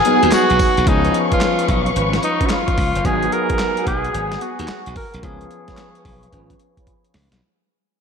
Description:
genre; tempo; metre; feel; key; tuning
R&B, new jack swing; 110 BPM; 4/4; swing 65% on 16ths; unclear; A4 = 440 Hz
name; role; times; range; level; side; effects
breathy tenor saxophone; melody; 0.0-6.9 s; D#4 to A#4; -20 LUFS; equal; low-pass filter, slapback echo
warm concert grand piano; accompaniment; 0.0-7.4 s; E#3 to B5; -23 LUFS; left 2 dB; low-pass filter, slapback echo
muted studio string section; sustained chords; 0.0-7.4 s; G#4 to C#6; -25 LUFS; left 3 dB; low-pass filter
mellow synth brass; stabs; 0.0-6.9 s; B3 to B4; -26 LUFS; right 3 dB; chorus, low-pass filter, slapback echo
dusty soul sampler-style drum kit; drums; 0.0-7.4 s; handclaps, hi-hat, kick drum, snare drum, tambourine; -22 LUFS; equal; overdrive
glassy slap bass; bass; 0.2-7.4 s; F#1 to D#2; -22 LUFS; right 1 dB; none
room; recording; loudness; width
wet scoring stage reverb, RT60 1.8 s, small room ambience; big arena sound; -15 LUFS; side -6 dB against mid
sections
0.0-7.4 A section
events
fade-out 0.0-7.4; filter sweep 0.0-7.4; drum fill 6.3-7.4; grand piano fill 6.6-7.4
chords
0.0 G#m7; 0.9 C#7; 3.0 G#m7; 5.2 C#7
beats
0.32 | 0.87 1.41 1.96 2.50 | 3.05 3.60 4.14 4.69 | 5.23 5.78 6.32 6.87

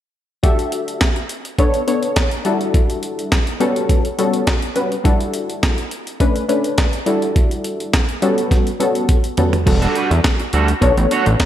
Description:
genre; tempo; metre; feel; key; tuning
early-eighties boogie funk; 104 BPM; 4/4; straight; E dorian; A4 = 440 Hz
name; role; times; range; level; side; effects
funky polysynth comp; accompaniment; 0.4-11.5 s; G3 to E5; -19 LUFS; left 2 dB; chorus, slapback echo
breakbeat sampler-style drum kit; drums; 0.4-11.5 s; crash cymbal, handclaps, hi-hat, kick drum, snare drum, toms; -17 LUFS; equal; none
electric guitar at the edge of break-up; riff; 9.7-11.3 s; G3 to C#5; -20 LUFS; right 4 dB; ensemble chorus
fat analog bass; bass; 9.7-11.4 s; E1 to E2; -15 LUFS; equal; none
room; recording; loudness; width
moderate lush hall reverb, RT60 2.1 s; big arena sound; -15 LUFS; side -11 dB against mid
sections
0.4-9.7 A section; 9.7-11.5 B section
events
drum fill 8.5-9.7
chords
0.4 Em11; 1.6 Bm9; 2.5 Em11; 3.6 A13; 5.1 Em11; 6.2 Bm9; 7.1 Em11; 8.2 A13; 9.7 Em11; 10.8 Bm9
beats
| 0.44 1.01 1.59 2.17 | 2.74 3.32 3.90 4.47 | 5.05 5.63 6.21 6.78 | 7.36 7.94 8.51 9.09 | 9.67 10.24 10.82 11.40

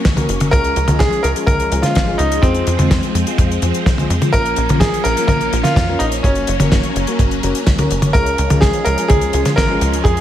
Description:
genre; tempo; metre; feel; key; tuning
italo disco; 126 BPM; 4/4; straight; unclear; A4 = 440 Hz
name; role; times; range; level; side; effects
bright grand piano; melody; 0.0-10.2 s; C4 to Bb4; -19 LUFS; equal; digital delay
phased string machine; sustained chords; 0.0-10.2 s; F3 to Db4; -23 LUFS; right 1 dB; ensemble chorus, phaser
damped 70s drum kit; drums; 0.0-10.2 s; hi-hat, snare drum, toms; -19 LUFS; equal; studio ambience, gated reverb
tight sequencer bass; bass; 0.1-10.2 s; Gb1 to F2; -19 LUFS; equal; tube saturation
kick drum; drums; 0.1-10.1 s; none; -17 LUFS; equal; studio ambience
dark grand piano; stabs; 0.2-10.2 s; Ab3 to Bb4; -24 LUFS; left 4 dB; none
room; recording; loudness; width
light reverb, studio reverb; vinyl crackle; -13 LUFS; side -11 dB against mid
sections
0.0-10.2 A section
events
none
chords
0.0 Gb; 0.5 Db; 2.4 Fm; 4.3 Bbm; 6.2 Gb; 8.1 Db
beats
0.05 | 0.53 1.00 1.48 1.96 | 2.43 2.91 3.38 3.86 | 4.34 4.81 5.29 5.76 | 6.24 6.72 7.19 7.67 | 8.15 8.62 9.10 9.57 | 10.05

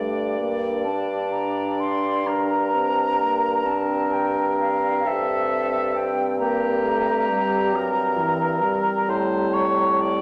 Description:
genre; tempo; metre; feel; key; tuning
classical, slow romantic movement for wind quintet; 40-45 BPM (dotted quarters); 12/8; rubato; G minor; A4 = 440 Hz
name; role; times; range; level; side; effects
warm oboe; second line; 0.0-10.2 s; G4 to D5; -28 LUFS; equal; none
bright clarinet; accompaniment; 0.0-10.2 s; C4 to D4; -35 LUFS; equal; none
mellow French horn; accompaniment; 0.0-10.2 s; E3 to D4; -30 LUFS; equal; none
mellow bassoon; bass; 0.0-10.2 s; G2 to A2; -28 LUFS; equal; none
silver concert flute; melody; 0.8-10.0 s; E5 to C6; -28 LUFS; equal; none
room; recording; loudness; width
wet recital hall reverb, RT60 1.6 s; none; -22 LUFS; mono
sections
0.0-10.2 A section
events
none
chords
0.0 Gm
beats
0.86 2.27 3.67 | 5.05 6.38 7.74 9.08

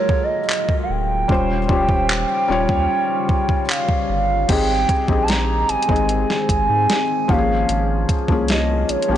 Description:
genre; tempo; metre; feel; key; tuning
contemporary R&B; 75 BPM; 4/4; straight; Ab major; A4 = 441 Hz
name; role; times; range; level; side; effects
gliding portamento lead; melody; 0.0-9.2 s; Db5 to Bb5; -21 LUFS; right 2 dB; chorus
felt-muted upright piano; accompaniment; 0.0-9.2 s; F3 to Db5; -22 LUFS; left 4 dB; none
deep dark ambient pad; sustained chords; 0.0-9.2 s; Db3 to F4; -29 LUFS; left 2 dB; chorus, built-in reverb, sidechain pumping
crisp 8-bit digital drum machine; drums; 0.1-9.1 s; crash cymbal, handclaps, hi-hat, kick drum, snare drum; -21 LUFS; right 1 dB; overdrive, vintage 12-bit sampler grit
saturated sub bass; bass; 0.9-9.2 s; D1 to Ab2; -23 LUFS; equal; none
room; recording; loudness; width
light reverb, digital ambience; blown-out, overdriven recording, overdrive, nothing above 10.4 kHz; -16 LUFS; side -11 dB against mid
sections
0.0-4.5 A section; 4.5-9.2 B section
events
none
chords
0.0 Gbmaj9; 1.3 Eb13; 4.5 Abmaj7; 7.3 Db6/Ab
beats
0.49 | 1.29 2.09 2.89 3.69 | 4.49 5.29 6.09 6.89 | 7.69 8.49

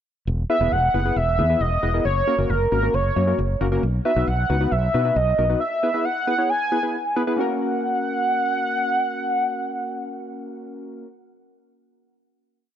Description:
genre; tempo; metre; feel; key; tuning
synth-pop; 135 BPM; 4/4; straight; F# mixolydian; A4 = 440 Hz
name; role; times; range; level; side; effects
fretless electric bass; bass; 0.3-5.5 s; E1 to B2; -22 LUFS; equal; none
warm velvety synth lead; melody; 0.5-11.1 s; A#4 to G#5; -22 LUFS; right 1 dB; chorus, analog delay
warm analog keys; accompaniment; 0.5-11.1 s; A#3 to C#5; -26 LUFS; left 2 dB; chorus
room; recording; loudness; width
light reverb; dry, gritty hardware recording; -19 LUFS; side -10 dB against mid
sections
0.3-7.4 pre-chorus; 7.4-10.9 final chord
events
none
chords
0.3 E; 2.1 F#; 3.8 B; 5.6 E; 7.4 F#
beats
| 0.27 0.72 1.16 1.61 | 2.05 2.50 2.94 3.38 | 3.83 4.27 4.72 5.16 | 5.61 6.05 6.50 6.94 | 7.38 7.83 8.27 8.72 | 9.16 9.61 10.05 10.50

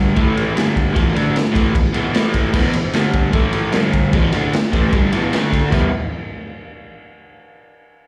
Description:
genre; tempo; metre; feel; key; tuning
garage rock duo or trio; 151 BPM; 4/4; straight; E minor; A4 = 439 Hz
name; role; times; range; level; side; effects
crunchy overdriven guitar; riff; 0.0-5.9 s; E2 to E4; -20 LUFS; equal; slapback echo
raw garage drum kit; drums; 0.2-5.8 s; crash cymbal, kick drum, ride cymbal, snare drum, toms; -20 LUFS; equal; none
room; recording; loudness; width
small room ambience; live gig heard through the venue's PA, club reverb; -17 LUFS; mono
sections
0.0-5.7 A section; 5.7-7.3 B section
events
none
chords
0.2 A5; 0.6 G5; 1.0 E5; 2.1 A5; 2.5 E5; 2.9 G5; 3.3 A5; 3.7 G5; 4.1 Em; 5.3 D5; 5.7 Em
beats
0.17 0.56 | 0.96 1.35 1.75 2.15 | 2.54 2.94 3.34 3.73 | 4.13 4.53 4.92 5.32 | 5.71

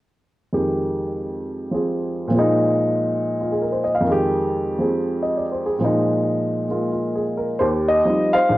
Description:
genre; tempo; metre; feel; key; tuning
solo jazz; 136 BPM; 4/4; swing 65% on 8ths, rubato; unclear; A4 = 440 Hz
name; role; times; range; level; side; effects
warm upright piano; solo; 0.5-8.6 s; Bb1 to F5; -18 LUFS; equal; none
room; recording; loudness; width
moderate club reverb, RT60 0.7 s; worn, warbling old tape, cassette tape, warbly pitch drift; -19 LUFS; side -17 dB against mid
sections
0.6-7.6 A section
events
none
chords
0.6 Fm9; 2.3 Bb7sus4; 4.1 Fm9; 5.8 Bb7sus4; 7.6 Eb69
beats
| 0.55 1.00 1.45 1.89 | 2.33 2.77 3.20 3.63 | 4.07 4.50 4.94 5.38 | 5.82 6.25 6.69 7.14 | 7.59 8.04 8.49

